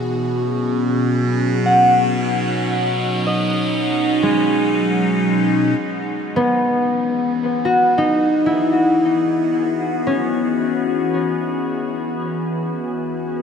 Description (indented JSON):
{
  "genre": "ambient",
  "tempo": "free time",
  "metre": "none",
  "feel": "none",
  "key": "E major",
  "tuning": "A4 = 436 Hz",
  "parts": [
    { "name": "evolving wavetable pad", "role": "sustained chords", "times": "0.0-13.4 s", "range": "B2 to G#4", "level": "-20 LUFS", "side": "equal", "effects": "phaser, built-in reverb" },
    { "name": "concert harp", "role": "arpeggios", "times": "0.0-13.4 s", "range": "G#3 to F#5", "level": "-18 LUFS", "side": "left 1 dB", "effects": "diffuse ambient delay" },
    { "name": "organ-like drone", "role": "drone", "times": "8.3-13.4 s", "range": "E3 to B3", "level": "-30 LUFS", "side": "right 1 dB", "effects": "ensemble chorus, built-in reverb" }
  ],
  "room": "wet huge ambient reverb, RT60 8.8 s",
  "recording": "none",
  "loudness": "-16 LUFS",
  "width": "side -7 dB against mid",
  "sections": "0.0-5.8 A section; 5.8-13.4 B section",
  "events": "fade-in on ambient pad 5.8-13.4; fade-in on synth drone 5.8-13.4",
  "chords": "0.0 B69; 5.8 Emaj7; 12.2 E69"
}